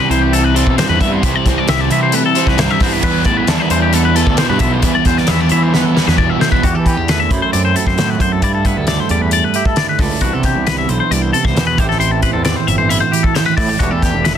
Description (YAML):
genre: math rock and midwest emo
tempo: 134 BPM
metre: 4/4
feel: straight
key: unclear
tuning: A4 = 441 Hz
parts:
  - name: twelve-string electric guitar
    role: accompaniment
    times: 0.0-14.4 s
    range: E2 to G4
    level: -19 LUFS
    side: right 8 dB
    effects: none
  - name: twangy electric guitar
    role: arpeggios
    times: 0.0-14.4 s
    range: F#4 to E5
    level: -18 LUFS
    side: left 7 dB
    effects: phaser
  - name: crunchy overdriven guitar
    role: riff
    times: 0.0-6.6 s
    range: C3 to E4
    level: -18 LUFS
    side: left 1 dB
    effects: none
  - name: fuzz picked electric bass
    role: bass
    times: 0.1-14.4 s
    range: E1 to E3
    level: -18 LUFS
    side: equal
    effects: overdrive
  - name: loose indie drum kit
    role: drums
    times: 0.1-14.4 s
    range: crash cymbal, hi-hat, kick drum, snare drum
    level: -18 LUFS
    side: equal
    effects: none
room: little or no reverb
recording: dense, heavily limited modern master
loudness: -12 LUFS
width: side -9 dB against mid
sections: 0.0-6.6 A section; 6.6-14.4 B section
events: drum fill 5.7-6.6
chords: 0.0 Cmaj7; 6.6 Em11; 7.3 F#m7b5; 8.4 G69; 10.2 Cmaj9#11; 11.8 Am7; 13.8 Em11